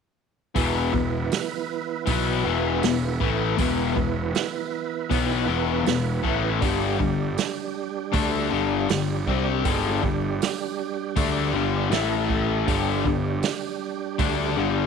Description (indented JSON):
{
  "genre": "blues rock power trio and southern rock",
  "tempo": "79 BPM",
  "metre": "4/4",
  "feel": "straight",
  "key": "E minor",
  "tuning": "A4 = 439 Hz",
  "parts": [
    { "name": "overdriven tonewheel organ", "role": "sustained chords", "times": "0.5-14.9 s", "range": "E3 to B4", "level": "-29 LUFS", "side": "right 11 dB", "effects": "chorus vibrato, fast rotary speaker" },
    { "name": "distorted electric guitar", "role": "riff", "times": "0.6-14.9 s", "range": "E2 to D4", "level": "-25 LUFS", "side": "left 11 dB", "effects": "distortion" },
    { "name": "fuzz picked electric bass", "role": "bass", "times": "0.6-14.9 s", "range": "E1 to D2", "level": "-27 LUFS", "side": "right 1 dB", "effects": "overdrive" },
    { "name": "vintage drum kit", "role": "drums", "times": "0.6-14.4 s", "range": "hi-hat, kick drum, snare drum", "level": "-28 LUFS", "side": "right 4 dB", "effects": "none" }
  ],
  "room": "moderate plate reverb, RT60 2.1 s",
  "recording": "1960s-style stereo with parts hard left and right",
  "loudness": "-22 LUFS",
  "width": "side -6 dB against mid",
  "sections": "0.6-14.9 A section",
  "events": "none",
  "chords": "0.6 E5; 6.6 G5; 11.9 A5; 12.7 G5",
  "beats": "| 0.56 1.31 2.07 2.83 | 3.59 4.35 5.11 5.87 | 6.62 7.38 8.14 8.90 | 9.65 10.41 11.17 11.93 | 12.68 13.44 14.20"
}